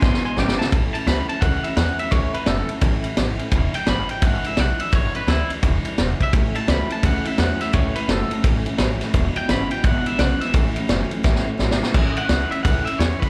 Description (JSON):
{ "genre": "rockabilly", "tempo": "171 BPM", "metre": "4/4", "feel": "swing 63% on 8ths", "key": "A major", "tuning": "A4 = 439 Hz", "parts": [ { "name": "electric guitar at the edge of break-up", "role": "melody", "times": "0.0-13.3 s", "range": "E4 to C6", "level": "-29 LUFS", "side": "equal", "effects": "slapback echo, tape echo" }, { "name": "picked steel-string acoustic guitar", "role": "accompaniment", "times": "0.0-13.3 s", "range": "E2 to E4", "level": "-31 LUFS", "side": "equal", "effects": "none" }, { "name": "electric guitar through a small old amp", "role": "riff", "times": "0.0-0.7, 6.3-11.9 s", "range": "E2 to F#3", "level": "-30 LUFS", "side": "equal", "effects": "spring reverb" }, { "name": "upright bass", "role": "bass", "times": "0.0-13.3 s", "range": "E1 to E2", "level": "-25 LUFS", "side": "equal", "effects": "none" }, { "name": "vintage drum kit", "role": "drums", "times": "0.0-13.3 s", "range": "crash cymbal, kick drum, ride cymbal, snare drum", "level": "-24 LUFS", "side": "equal", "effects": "none" } ], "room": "small room ambience", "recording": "live gig heard through the venue's PA, club reverb", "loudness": "-21 LUFS", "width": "mono", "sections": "0.7-11.9 A section; 11.9-13.3 B section", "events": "drum fill 0.0-0.7, 11.2-11.9; clean electric guitar solo 11.9-13.3", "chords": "0.0 E7; 0.7 A; 3.5 E7; 6.3 A; 9.1 E7; 10.5 A" }